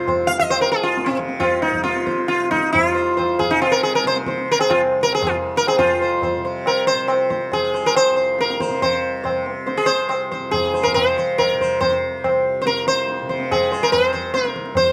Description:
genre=indian classical, Hindustani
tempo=139 BPM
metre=7/4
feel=straight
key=unclear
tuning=A4 = 441 Hz
part: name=sitar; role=melody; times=0.0-14.9 s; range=C4 to F5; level=-21 LUFS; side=equal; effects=slapback echo
part: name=tanpura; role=drone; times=0.0-14.9 s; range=C2 to C3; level=-31 LUFS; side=equal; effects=none
part: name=tabla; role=percussion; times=0.1-14.9 s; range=none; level=-24 LUFS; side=equal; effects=slapback echo
room=little or no reverb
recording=recorded outdoors, with no room sound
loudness=-19 LUFS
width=mono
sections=0.0-5.8 A section; 5.8-14.9 B section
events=speeding up 0.0-14.9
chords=none

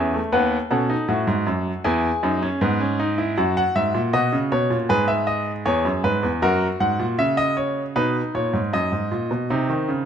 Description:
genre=classical, baroque-style 4-part fugue for grand piano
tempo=78 BPM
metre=4/4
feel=straight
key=unclear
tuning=A4 = 440 Hz
part: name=clear baby grand piano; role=solo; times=0.0-10.1 s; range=D#2 to G#5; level=-19 LUFS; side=equal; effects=none
room=moderate recital hall reverb, RT60 1.7 s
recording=close, detailed microphones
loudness=-19 LUFS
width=side -8 dB against mid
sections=0.0-9.5 A section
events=none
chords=0.3 B7/D#; 1.8 E; 3.4 B/F#; 4.9 C#m7/G#; 6.4 F#7; 8.0 B; 9.5 G#/B# (rootless)

